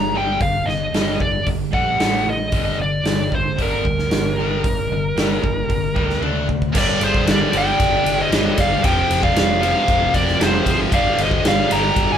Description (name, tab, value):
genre	hard rock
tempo	114 BPM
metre	4/4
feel	straight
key	G minor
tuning	A4 = 440 Hz
part	high-gain lead guitar	melody	0.0-12.2 s	Bb4 to Bb5	-21 LUFS	equal	distortion
part	crunchy overdriven guitar	riff	0.0-12.2 s	F2 to D4	-26 LUFS	right 2 dB	none
part	distorted electric guitar	riff	0.0-12.2 s	F2 to D4	-27 LUFS	left 8 dB	overdrive
part	fingered electric bass	bass	0.0-12.1 s	F1 to D2	-26 LUFS	equal	none
part	huge arena drum kit	drums	0.4-12.1 s	crash cymbal, hi-hat, kick drum, ride cymbal, snare drum, toms	-21 LUFS	equal	none
part	high-gain distorted guitar	riff	6.7-12.2 s	F2 to G3	-24 LUFS	equal	distortion
part	smooth overdriven lead guitar	second line	6.8-12.2 s	Ab4 to G5	-27 LUFS	right 4 dB	none
room	light reverb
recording	band playing live in one room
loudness	-16 LUFS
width	side -9 dB against mid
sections	0.0-6.7 A section; 6.7-12.2 B section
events	drum fill 6.2-6.7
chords	0.0 Gm; 2.0 A5; 2.5 Gm; 6.2 D5; 6.7 G5; 8.8 F5; 10.9 G5